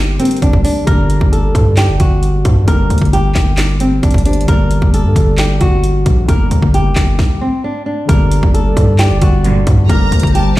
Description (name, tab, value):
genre	hip hop, trap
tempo	133 BPM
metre	4/4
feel	half-time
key	G harmonic minor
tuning	A4 = 439 Hz
part	flamenco guitar	melody	0.0-10.6 s	C4 to Bb4	-18 LUFS	equal	ping-pong delay
part	dark concert grand piano	accompaniment	0.0-10.6 s	D3 to D5	-21 LUFS	left 4 dB	none
part	distorted 808-style bass	bass	0.0-10.6 s	F#1 to G2	-13 LUFS	equal	distortion
part	trap drum kit	drums	0.2-10.6 s	handclaps, hi-hat, kick drum, snare drum	-14 LUFS	equal	none
part	dark analog pad	sustained chords	8.1-10.6 s	G3 to D5	-22 LUFS	equal	chorus
part	muted symphonic string section	stabs	9.4-9.8 s	Bb1 to D3	-19 LUFS	right 2 dB	none
part	bright studio violin section	second line	9.9-10.6 s	A5 to Bb5	-22 LUFS	equal	none
room	small room ambience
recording	played on a big sound system in a bare room, large studio reverb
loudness	-10 LUFS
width	side -16 dB against mid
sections	0.0-8.1 A section; 8.1-10.6 B section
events	stop 7.2-8.1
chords	0.0 Gm